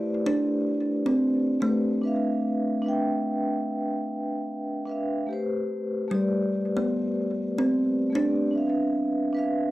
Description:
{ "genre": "hip hop", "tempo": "74 BPM", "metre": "4/4", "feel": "swing 62% on 16ths", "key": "D dorian", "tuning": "A4 = 438 Hz", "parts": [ { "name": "kalimba", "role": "melody", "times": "0.0-9.7 s", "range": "G3 to E4", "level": "-26 LUFS", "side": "equal", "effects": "tape echo" }, { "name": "vibraphone with soft mallets", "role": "accompaniment", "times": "0.0-9.7 s", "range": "A3 to G5", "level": "-28 LUFS", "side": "equal", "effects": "none" } ], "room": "wet studio reverb, RT60 0.5 s", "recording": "worn, warbling old tape, cassette tape, warbly pitch drift", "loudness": "-24 LUFS", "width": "side -16 dB against mid", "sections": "0.0-9.7 A section", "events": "none", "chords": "0.0 Am9; 2.0 Dm69; 5.3 Am9; 8.5 Dm69" }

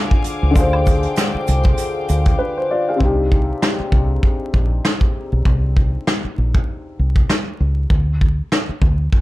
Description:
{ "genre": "hip hop, boom-bap hip-hop", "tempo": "98 BPM", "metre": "4/4", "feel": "swing 55% on 16ths", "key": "C minor", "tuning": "A4 = 441 Hz", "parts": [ { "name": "dark upright piano", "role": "accompaniment", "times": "0.0-7.9 s", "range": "C3 to F5", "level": "-22 LUFS", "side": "left 2 dB", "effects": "cassette tape, high-pass filter, low-pass filter" }, { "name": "warm studio string section", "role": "sustained chords", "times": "0.0-3.0 s", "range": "C5 to D6", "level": "-28 LUFS", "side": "left 2 dB", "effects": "high-pass filter, low-pass filter" }, { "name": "soft brush drum kit", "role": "drums", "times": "0.1-9.2 s", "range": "hi-hat, kick drum, rim click, snare drum", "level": "-17 LUFS", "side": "equal", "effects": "none" }, { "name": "tube shaker and woodblock", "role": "percussion", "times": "0.3-2.2 s", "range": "none", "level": "-33 LUFS", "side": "right 2 dB", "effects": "none" }, { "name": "deep dub fingered electric bass", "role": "bass", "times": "0.4-9.1 s", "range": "Bb1 to D2", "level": "-18 LUFS", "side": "equal", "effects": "none" } ], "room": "little or no reverb", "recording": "vinyl crackle", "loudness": "-15 LUFS", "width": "side -17 dB against mid", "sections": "0.0-3.0 A section; 3.0-9.2 B section", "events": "drums muted 2.4-3.0; hi-hats muted 3.0-9.2", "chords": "0.0 Dm7b5; 3.0 Cmadd9; 7.9 N.C." }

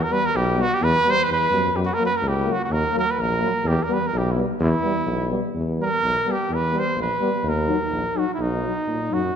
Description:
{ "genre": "balkan folk, Balkan brass band", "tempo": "126 BPM", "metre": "2/4", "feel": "swing 56% on 16ths", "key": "E hungarian minor", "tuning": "A4 = 435 Hz", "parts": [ { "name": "warm trumpet", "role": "melody", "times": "0.0-9.4 s", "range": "D#4 to C5", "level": "-22 LUFS", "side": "right 2 dB", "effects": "none" }, { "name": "warm euphonium", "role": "accompaniment", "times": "0.1-9.2 s", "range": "A#3 to D#4", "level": "-29 LUFS", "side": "left 5 dB", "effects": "none" }, { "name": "warm trombone", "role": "accompaniment", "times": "0.1-9.2 s", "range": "F#3 to G3", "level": "-30 LUFS", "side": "right 1 dB", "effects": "none" }, { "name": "warm tuba", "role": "bass", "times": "0.3-9.3 s", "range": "A#1 to A#2", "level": "-25 LUFS", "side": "left 1 dB", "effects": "none" } ], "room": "wet concert hall reverb, RT60 2.1 s", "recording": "minimal, uncompressed stereo recording", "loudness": "-19 LUFS", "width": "side -8 dB against mid", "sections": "0.0-5.6 A section; 5.6-9.4 B section", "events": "trumpet solo 5.6-9.4", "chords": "0.0 Em; 1.8 F#; 2.7 D#m; 3.7 Em; 7.5 D#m; 8.4 B" }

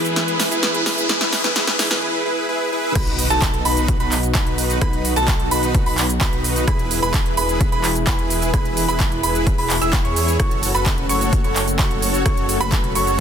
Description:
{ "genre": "EDM, festival progressive house", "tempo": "129 BPM", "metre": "4/4", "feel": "straight", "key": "E major", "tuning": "A4 = 440 Hz", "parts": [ { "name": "lush unison pad", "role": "sustained chords", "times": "0.0-13.2 s", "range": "E3 to B4", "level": "-26 LUFS", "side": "equal", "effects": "chorus, sidechain pumping" }, { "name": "dense compressed supersaw", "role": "riff", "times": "0.0-13.2 s", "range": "D#4 to E5", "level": "-23 LUFS", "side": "equal", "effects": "sidechain pumping, low-pass filter, ping-pong delay" }, { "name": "wide detuned saw bass", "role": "bass", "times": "0.0-13.2 s", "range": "E1 to E2", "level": "-25 LUFS", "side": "equal", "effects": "chorus, sidechain pumping, high-pass filter" }, { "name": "big-room dance drum kit", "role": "drums", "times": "0.0-13.2 s", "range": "crash cymbal, handclaps, hi-hat, rim click, shaker, snare drum", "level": "-22 LUFS", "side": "right 1 dB", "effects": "none" }, { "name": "riser and impact", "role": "sound effects", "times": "0.0-4.8 s", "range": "none", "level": "-26 LUFS", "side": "left 1 dB", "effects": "none" }, { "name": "bright concert grand piano", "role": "arpeggios", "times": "3.0-13.2 s", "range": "A5 to E6", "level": "-25 LUFS", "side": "right 3 dB", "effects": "sidechain pumping, ping-pong delay" }, { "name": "electronic kick drum", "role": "drums", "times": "3.0-12.8 s", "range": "none", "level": "-19 LUFS", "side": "equal", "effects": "none" } ], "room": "light reverb, digital ambience", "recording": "dense, heavily limited modern master, high-pass filter", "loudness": "-16 LUFS", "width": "side -8 dB against mid", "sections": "0.0-3.0 A section; 3.0-13.2 B section", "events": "build-up 0.0-3.0; drum fill 0.0-2.0; riser 0.0-2.0; break 2.0-3.0; drop 3.0-13.2; impact 3.0-4.8", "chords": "0.0 E; 3.0 B; 6.7 E; 10.4 F#m" }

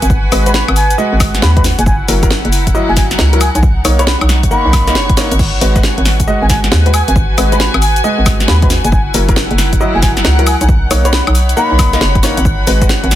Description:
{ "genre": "UK garage, two-step garage", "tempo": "136 BPM", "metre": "4/4", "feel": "swing 65% on 16ths", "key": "G# minor", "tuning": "A4 = 445 Hz", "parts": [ { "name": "wooden flute", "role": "melody", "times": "0.0-12.2 s", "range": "G#5 to B5", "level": "-20 LUFS", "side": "equal", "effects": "dub echo" }, { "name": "warm analog pad", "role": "sustained chords", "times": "0.0-13.2 s", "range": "F#5", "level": "-26 LUFS", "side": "left 2 dB", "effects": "chorus, sidechain pumping" }, { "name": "hollow knocking FM bass", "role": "bass", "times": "0.0-13.2 s", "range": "F#1 to D#2", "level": "-13 LUFS", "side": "equal", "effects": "none" }, { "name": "house drum kit", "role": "drums", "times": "0.0-13.2 s", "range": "crash cymbal, hi-hat, shaker, snare drum, woodblock", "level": "-16 LUFS", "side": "left 1 dB", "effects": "soft clipping on snare" }, { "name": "warm studio string section", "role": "texture", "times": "0.0-13.2 s", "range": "D#4 to C#6", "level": "-22 LUFS", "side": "equal", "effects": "sidechain pumping" }, { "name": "electronic kick drum", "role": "drums", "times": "0.1-12.9 s", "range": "none", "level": "-14 LUFS", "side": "equal", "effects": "none" }, { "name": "dark grand piano", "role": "stabs", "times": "0.3-12.9 s", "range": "F#3 to F#5", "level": "-18 LUFS", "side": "equal", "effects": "dub echo" } ], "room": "little or no reverb", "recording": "dense, heavily limited modern master", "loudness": "-9 LUFS", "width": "side -13 dB against mid", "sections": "0.0-13.2 A section", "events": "drum fill 5.2", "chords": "0.0 G#m7; 1.9 F#7; 3.6 Bmaj9; 5.4 G#m7; 8.9 F#7; 10.7 Bmaj9; 12.5 G#m7" }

